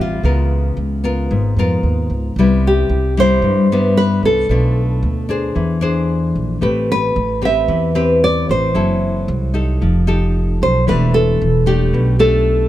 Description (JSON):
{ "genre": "bossa nova", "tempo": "113 BPM", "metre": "4/4", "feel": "straight", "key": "unclear", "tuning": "A4 = 440 Hz", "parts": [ { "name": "nylon-string guitar", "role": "melody", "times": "0.0-12.7 s", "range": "F4 to E5", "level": "-17 LUFS", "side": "right 1 dB", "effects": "none" }, { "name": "nylon-string guitar", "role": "accompaniment", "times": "0.0-12.7 s", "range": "G2 to C5", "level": "-18 LUFS", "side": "left 3 dB", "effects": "none" }, { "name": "upright bass", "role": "bass", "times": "0.0-12.7 s", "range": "E1 to G2", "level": "-18 LUFS", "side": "right 1 dB", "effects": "none" } ], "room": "little or no reverb", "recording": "close, detailed microphones", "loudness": "-13 LUFS", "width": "side -13 dB against mid", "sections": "0.0-12.7 A section", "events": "none", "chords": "0.2 C#13; 2.4 Cmaj7; 4.5 Bm7b5; 5.6 Eaug7; 6.6 Am9; 8.7 F#m7b5; 9.8 F9; 10.9 Em7", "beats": "| 0.24 0.77 1.30 1.84 | 2.37 2.90 3.43 3.96 | 4.49 5.02 5.55 6.09 | 6.62 7.15 7.68 8.21 | 8.74 9.28 9.81 10.34 | 10.87 11.40 11.94 12.47" }